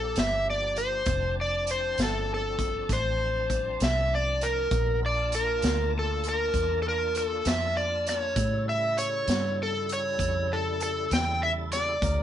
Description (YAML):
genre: slow blues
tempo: 66 BPM (dotted quarters)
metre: 12/8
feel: straight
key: unclear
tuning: A4 = 439 Hz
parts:
  - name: overdriven slide guitar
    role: melody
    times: 0.0-12.2 s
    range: A4 to G5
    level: -27 LUFS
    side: equal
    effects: none
  - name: tonewheel organ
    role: sustained chords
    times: 0.0-12.2 s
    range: C#3 to A5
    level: -38 LUFS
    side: equal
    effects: slow rotary speaker, chorus vibrato
  - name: vintage muted fingered electric bass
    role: bass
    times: 0.0-12.2 s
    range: F1 to A2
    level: -31 LUFS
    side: equal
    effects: none
  - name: vintage drum kit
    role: drums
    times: 0.2-12.2 s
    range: hi-hat, kick drum, snare drum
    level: -31 LUFS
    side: equal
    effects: none
room: light reverb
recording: band playing live in one room, nothing above 11.0 kHz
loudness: -25 LUFS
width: side -10 dB against mid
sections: 0.0-12.2 A section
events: none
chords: 0.0 Gm7; 1.1 Dm7; 4.7 Bbmaj7; 8.4 A7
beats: 0.16 | 1.07 1.99 2.90 3.81 | 4.72 5.63 6.54 7.46 | 8.37 9.28 10.19 11.11 | 12.02